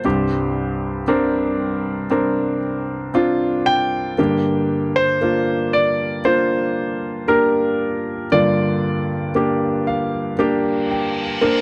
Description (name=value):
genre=pop ballad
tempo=58 BPM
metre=4/4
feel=straight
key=unclear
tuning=A4 = 441 Hz
part: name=clear concert grand piano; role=melody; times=0.0-11.4 s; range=Bb4 to G5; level=-23 LUFS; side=equal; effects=slapback echo
part: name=clear grand piano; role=accompaniment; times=0.0-11.6 s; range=C2 to G5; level=-21 LUFS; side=equal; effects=none
part: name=reverse cymbal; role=sound effects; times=10.7-11.6 s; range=none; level=-28 LUFS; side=equal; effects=none
room=light reverb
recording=dry, close 1970s-style studio recording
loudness=-20 LUFS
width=mono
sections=0.0-11.6 A section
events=grand piano fill 9.4-11.6; reverse cymbal 10.7-11.6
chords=0.0 Csus2; 4.2 Gm